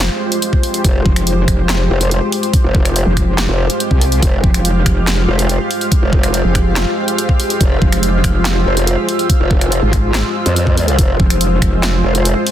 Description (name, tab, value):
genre	heavy wobble dubstep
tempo	142 BPM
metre	4/4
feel	half-time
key	F harmonic minor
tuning	A4 = 442 Hz
part	lush unison pad	sustained chords	0.0-12.5 s	Ab3 to F5	-20 LUFS	equal	chorus, phaser, vintage 12-bit sampler grit, sidechain pumping
part	metallic wobble bass	bass	0.0-12.0 s	F1 to C2	-15 LUFS	equal	chorus, overdrive
part	big-room dance drum kit	drums	0.0-12.5 s	finger snaps, handclaps, hi-hat, snare drum	-20 LUFS	equal	studio reverb
part	granular cloud pad	texture	0.0-12.5 s	F4 to E6	-22 LUFS	left 1 dB	built-in reverb, sidechain pumping
part	electronic kick drum	drums	0.5-11.7 s	none	-14 LUFS	equal	overdrive, studio reverb
part	formant-sweep wobble bass	bass	0.8-12.3 s	F1 to F2	-15 LUFS	equal	chorus, overdrive
room	digital ambience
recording	dense, heavily limited modern master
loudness	-12 LUFS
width	side -11 dB against mid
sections	0.0-12.5 A section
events	none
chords	0.0 Fmadd9